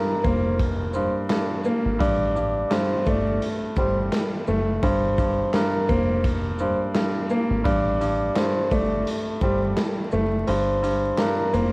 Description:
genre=hip hop, boom-bap hip-hop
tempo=85 BPM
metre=4/4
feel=swing 56% on 16ths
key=G minor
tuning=A4 = 440 Hz
part: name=vibraphone with soft mallets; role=melody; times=0.0-11.7 s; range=Bb4 to D6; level=-25 LUFS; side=equal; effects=high-pass filter, low-pass filter, cassette tape
part: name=warm upright piano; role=accompaniment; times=0.0-11.7 s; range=G2 to Bb3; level=-24 LUFS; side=equal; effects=cassette tape, high-pass filter, low-pass filter
part: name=deep dub fingered electric bass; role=bass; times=0.2-11.7 s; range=F1 to A1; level=-27 LUFS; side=equal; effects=none
part: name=raw garage drum kit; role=drums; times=0.2-11.7 s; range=handclaps, hi-hat, kick drum, shaker, snare drum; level=-27 LUFS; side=equal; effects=none
room=little or no reverb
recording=home recording on cassette, vinyl crackle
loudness=-20 LUFS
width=side -28 dB against mid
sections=0.0-11.7 A section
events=kick muted 10.5-11.7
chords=0.0 Gm7; 2.0 Am7; 4.8 Gm7; 7.7 Am7; 10.5 Gm7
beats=0.59 1.30 | 2.01 2.71 3.42 4.12 | 4.83 5.54 6.24 6.95 | 7.65 8.36 9.07 9.77 | 10.48 11.18

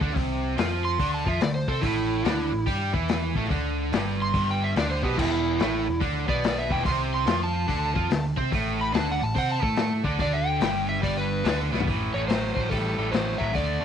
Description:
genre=blues rock power trio and southern rock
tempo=144 BPM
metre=4/4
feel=swing 65% on 8ths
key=unclear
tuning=A4 = 440 Hz
part: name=overdriven semi-hollow guitar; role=riff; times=0.0-13.8 s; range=E2 to C5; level=-28 LUFS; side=right 1 dB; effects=none
part: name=overdriven picked electric bass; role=bass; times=0.0-13.8 s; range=E1 to C3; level=-29 LUFS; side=right 1 dB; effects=none
part: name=vintage drum kit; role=drums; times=0.0-13.7 s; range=crash cymbal, hi-hat, kick drum, snare drum, toms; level=-28 LUFS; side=left 4 dB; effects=none
part: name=overdriven slide guitar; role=melody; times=0.8-13.8 s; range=E4 to C6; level=-28 LUFS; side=right 2 dB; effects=none
room=light reverb, studio ambience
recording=1960s-style stereo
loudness=-23 LUFS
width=side -8 dB against mid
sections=0.0-11.9 A section; 11.9-13.8 B section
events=electric slide guitar solo 0.0-11.9; drum fill 11.7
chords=0.0 Dm7; 1.8 A5; 3.5 Em7; 6.9 Dm7; 8.5 Asus4; 9.4 D5; 10.2 G; 11.9 A5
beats=| 0.17 0.59 1.00 1.42 | 1.84 2.26 2.67 3.09 | 3.51 3.93 4.35 4.76 | 5.18 5.60 6.02 6.44 | 6.86 7.27 7.69 8.11 | 8.53 8.94 9.36 9.78 | 10.20 10.62 11.04 11.45 | 11.87 12.29 12.71 13.13 | 13.55

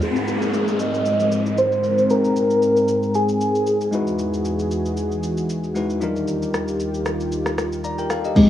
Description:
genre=amapiano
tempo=115 BPM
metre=4/4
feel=swing 55% on 16ths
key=Ab lydian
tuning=A4 = 440 Hz
part: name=soft struck synth lead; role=melody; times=0.0-3.9, 8.4-8.5 s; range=Ab3 to Eb5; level=-19 LUFS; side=equal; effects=chorus, low-pass filter, cassette tape
part: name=bell-like tine electric piano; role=accompaniment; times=0.0-8.5 s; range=F3 to Bb5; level=-24 LUFS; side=left 3 dB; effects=medium stereo tremolo, low-pass filter
part: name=warm analog pad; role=sustained chords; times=0.0-8.5 s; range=Eb2 to Bb4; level=-25 LUFS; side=equal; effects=chorus, sidechain pumping, low-pass filter
part: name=afro-pop drum kit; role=drums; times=0.0-8.5 s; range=crash cymbal, kick drum, rim click, shaker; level=-28 LUFS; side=equal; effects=cassette tape
part: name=downlifter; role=sound effects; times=0.0-4.2 s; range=none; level=-27 LUFS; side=right 1 dB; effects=none
part: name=congas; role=percussion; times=8.4-8.5 s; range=none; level=-31 LUFS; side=right 2 dB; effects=none
room=light reverb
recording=home recording on cassette, small room ambience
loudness=-19 LUFS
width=side -11 dB against mid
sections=0.0-8.4 A section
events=filter sweep 0.0-8.4; kick muted 7.3-8.4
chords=0.0 Abmaj9; 3.9 Emaj9; 6.0 Ebmaj9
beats=| 0.01 0.54 1.06 1.58 | 2.10 2.62 3.15 3.67 | 4.19 4.71 5.23 5.75 | 6.28 6.80 7.32 7.84 | 8.36

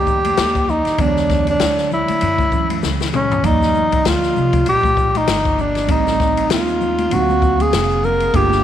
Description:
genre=hip hop, jazz-hop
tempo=98 BPM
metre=4/4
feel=swing 58% on 16ths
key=unclear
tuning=A4 = 440 Hz
part: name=breathy tenor saxophone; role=melody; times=0.0-8.6 s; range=C#4 to A#4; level=-17 LUFS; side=equal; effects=tape echo
part: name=mellow tine electric piano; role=accompaniment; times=0.0-8.6 s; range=D3 to E#5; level=-23 LUFS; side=right 11 dB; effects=medium stereo tremolo
part: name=upright bass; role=bass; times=0.0-8.6 s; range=E#1 to F#2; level=-22 LUFS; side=equal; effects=none
part: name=open jazz drum kit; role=drums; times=0.1-8.6 s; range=hi-hat, kick drum, ride cymbal, snare drum, toms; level=-21 LUFS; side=left 3 dB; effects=none
part: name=tube shaker and congas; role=percussion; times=0.1-8.6 s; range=none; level=-30 LUFS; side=left 11 dB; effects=none
room=light reverb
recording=1960s-style stereo with parts hard left and right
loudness=-14 LUFS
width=side -10 dB against mid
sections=0.0-8.6 A section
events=drum fill 2.8-3.4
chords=0.0 Cm9 (rootless); 1.0 E13; 3.4 Ebmaj7; 5.9 Am7b5; 7.1 D7alt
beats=0.38 | 0.99 1.60 2.22 2.83 | 3.44 4.05 4.67 5.28 | 5.89 6.50 7.11 7.73 | 8.34

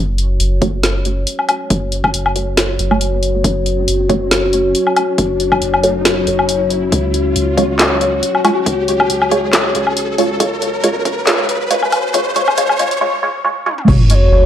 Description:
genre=deep dubstep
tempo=138 BPM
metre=4/4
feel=swing 55% on 16ths, half-time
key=unclear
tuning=A4 = 440 Hz
part: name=dark analog pad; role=sustained chords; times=0.0-14.5 s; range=F#4 to C#5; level=-19 LUFS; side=left 2 dB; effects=lush chorus
part: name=soft dub sub bass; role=bass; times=0.0-14.5 s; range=F#1 to C#2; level=-19 LUFS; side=equal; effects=none
part: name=riser and sub drop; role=sound effects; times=1.4-14.5 s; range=none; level=-21 LUFS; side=equal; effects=none
part: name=deep house drum kit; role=drums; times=0.2-14.2 s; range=crash cymbal, handclaps, hi-hat, snare drum, toms, woodblock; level=-16 LUFS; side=left 1 dB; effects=none
part: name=filtered dub chord stab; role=stabs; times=0.6-13.7 s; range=G#3 to C#5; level=-18 LUFS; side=right 2 dB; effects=phaser, cassette tape, dub echo
part: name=electronic kick drum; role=drums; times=0.6-14.0 s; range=none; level=-18 LUFS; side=equal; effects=high-pass filter on kick, high-pass filter on room
part: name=breathy mellow long shakuhachi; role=melody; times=14.1-14.4 s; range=C#5 to D#5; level=-16 LUFS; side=left 1 dB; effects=none
room=moderate digital room reverb, RT60 1.2 s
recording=dark, warm production, high-pass filter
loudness=-12 LUFS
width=side -10 dB against mid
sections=0.0-13.9 A section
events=build-up 0.0-13.9; filter sweep on synth stab 0.0-13.9; filter sweep on analog synth pad 0.0-13.9; riser 1.4-13.0; drum fill 13.7; impact 13.9-14.5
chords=0.0 F#5; 6.9 C#; 13.9 F#5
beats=0.40 0.84 1.27 | 1.71 2.14 2.58 3.01 | 3.44 3.88 4.32 4.75 | 5.18 5.62 6.05 6.49 | 6.92 7.36 7.79 8.23 | 8.66 9.10 9.53 9.97 | 10.40 10.84 11.27 11.71 | 12.14 12.57 13.01 13.45 | 13.88 14.31

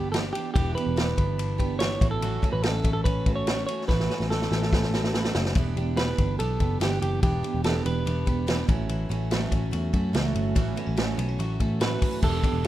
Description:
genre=jangly indie pop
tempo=144 BPM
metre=4/4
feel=straight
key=A mixolydian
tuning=A4 = 440 Hz
part: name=clean electric guitar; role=melody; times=0.0-8.7, 11.8-12.7 s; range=G4 to C#5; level=-31 LUFS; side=right 2 dB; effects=none
part: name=picked steel-string acoustic guitar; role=accompaniment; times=0.0-12.7 s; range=A2 to G4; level=-32 LUFS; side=right 7 dB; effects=none
part: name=twelve-string electric guitar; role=arpeggios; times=0.0-12.7 s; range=E3 to G4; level=-35 LUFS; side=left 5 dB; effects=none
part: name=vintage muted picked electric bass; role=bass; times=0.0-12.7 s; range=E1 to F#2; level=-28 LUFS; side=left 1 dB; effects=none
part: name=vintage drum kit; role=drums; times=0.1-12.7 s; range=crash cymbal, hi-hat, kick drum, ride cymbal, snare drum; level=-27 LUFS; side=equal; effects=none
room=small room reverb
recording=rough home demo mix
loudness=-23 LUFS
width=side -14 dB against mid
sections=0.0-5.6 A section; 5.6-12.2 B section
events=drum fill 3.9-5.6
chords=0.0 Em7; 2.0 A6; 5.6 Em7; 8.7 A6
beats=0.14 | 0.55 0.97 1.39 1.81 | 2.22 2.64 3.06 3.47 | 3.89 4.31 4.72 5.14 | 5.56 5.97 6.39 6.81 | 7.23 7.64 8.06 8.48 | 8.89 9.31 9.73 10.14 | 10.56 10.98 11.39 11.81 | 12.23 12.64

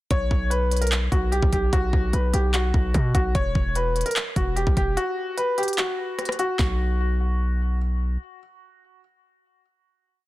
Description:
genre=hip hop, trap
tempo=148 BPM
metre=4/4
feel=half-time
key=unclear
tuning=A4 = 440 Hz
part: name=warm concert grand piano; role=melody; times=0.1-7.8 s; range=F#4 to C#5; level=-26 LUFS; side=left 1 dB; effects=ping-pong delay
part: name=hard-hitting 808-style bass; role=bass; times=0.1-8.2 s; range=E1 to B2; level=-23 LUFS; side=equal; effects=none
part: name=trap drum kit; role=drums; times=0.1-6.7 s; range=handclaps, hi-hat, kick drum, rim click, snare drum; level=-24 LUFS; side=equal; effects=overdrive
room=digital ambience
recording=dense, heavily limited modern master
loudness=-21 LUFS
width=side -17 dB against mid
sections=0.1-6.6 hook; 6.6-9.8 final chord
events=break 5.0-6.6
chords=0.1 B5; 3.3 E5; 6.6 B5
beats=| 0.11 0.51 0.92 1.32 | 1.73 2.13 2.54 2.94 | 3.35 3.75 4.16 4.57 | 4.97 5.38 5.78 6.19 | 6.59 7.00 7.40 7.81

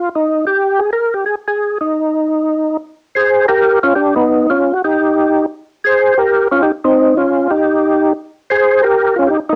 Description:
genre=jazz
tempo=179 BPM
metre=4/4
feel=swing 64% on 8ths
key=unclear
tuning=A4 = 440 Hz
part: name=percussive tonewheel organ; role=solo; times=0.0-9.6 s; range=Cb4 to C5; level=-14 LUFS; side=equal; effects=slow rotary speaker, overdrive, chorus vibrato, cassette tape
room=moderate small room reverb, RT60 0.5 s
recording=home recording on cassette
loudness=-14 LUFS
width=mono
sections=0.0-2.9 A section; 2.9-9.6 B section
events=none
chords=0.0 N.C.; 2.9 Gm; 4.3 Gaug; 5.6 Cm7; 6.9 Cmadd11; 7.6 N.C.; 8.3 Abmaj9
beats=| 0.24 0.58 0.91 1.25 | 1.58 1.92 2.25 2.59 | 2.92 3.26 3.60 3.93 | 4.26 4.60 4.93 5.27 | 5.61 5.94 6.27 6.61 | 6.94 7.28 7.61 7.95 | 8.28 8.62 8.95 9.29

